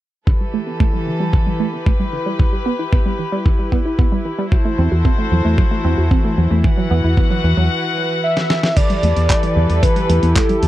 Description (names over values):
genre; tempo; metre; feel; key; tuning
italo disco; 113 BPM; 4/4; straight; unclear; A4 = 440 Hz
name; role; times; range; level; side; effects
rich chamber string section; sustained chords; 0.3-10.7 s; E3 to F#5; -21 LUFS; left 1 dB; none
analog pluck; arpeggios; 0.3-10.7 s; D3 to F#4; -23 LUFS; right 3 dB; chorus, tape echo
electronic kick drum; drums; 0.3-10.5 s; none; -16 LUFS; equal; none
fingered electric bass; bass; 4.8-10.7 s; E2; -15 LUFS; equal; none
wide unison lead; melody; 8.2-10.7 s; A4 to E5; -20 LUFS; equal; tape echo
dusty soul sampler-style drum kit; drums; 8.4-10.7 s; crash cymbal, handclaps, hi-hat, snare drum; -22 LUFS; equal; none
room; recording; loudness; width
little or no reverb; dry, close 1970s-style studio recording; -14 LUFS; side -14 dB against mid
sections
0.3-8.8 A section; 8.8-10.7 B section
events
filter sweep on synth arpeggio sound 0.3-8.8, 8.8-10.7; break 7.7-8.8; drum fill 8.4-8.8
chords
0.3 Gadd9; 2.4 Em; 4.5 F#dim/E; 6.6 Bsus4/E; 8.8 Gadd9/E